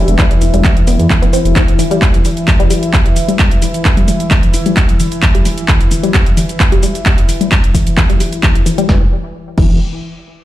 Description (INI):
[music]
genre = driving peak-time techno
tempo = 131 BPM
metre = 4/4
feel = straight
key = E minor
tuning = A4 = 445 Hz
[part]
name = dark detuned saw bass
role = bass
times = 0.0-1.5, 8.9-9.8 s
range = E1 to E2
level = -13 LUFS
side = equal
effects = sidechain pumping
[part]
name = analog drone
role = drone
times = 0.0-8.9 s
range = E3 to E4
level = -20 LUFS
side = left 1 dB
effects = chorus, sidechain pumping
[part]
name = techno drum kit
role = drums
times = 0.1-9.7 s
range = crash cymbal, handclaps, hi-hat, shaker, snare drum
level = -18 LUFS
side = right 1 dB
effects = sidechain pumping on hats, sidechain pumping on cymbals, sidechain pumping on perc
[part]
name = tight sequenced synth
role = riff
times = 0.2-9.8 s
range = E3 to C4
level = -18 LUFS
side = left 2 dB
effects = chorus, sidechain pumping, dub echo
[part]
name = electronic kick drum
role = drums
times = 0.2-9.7 s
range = none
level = -12 LUFS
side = equal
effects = none
[sound]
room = light reverb, digital ambience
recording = played on a big sound system in a bare room, large studio reverb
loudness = -9 LUFS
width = side -14 dB against mid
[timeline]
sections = 0.0-8.9 A section; 8.9-10.4 B section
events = filter sweep on synth arpeggio sound 0.0-8.9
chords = 0.0 E5; 8.9 N.C.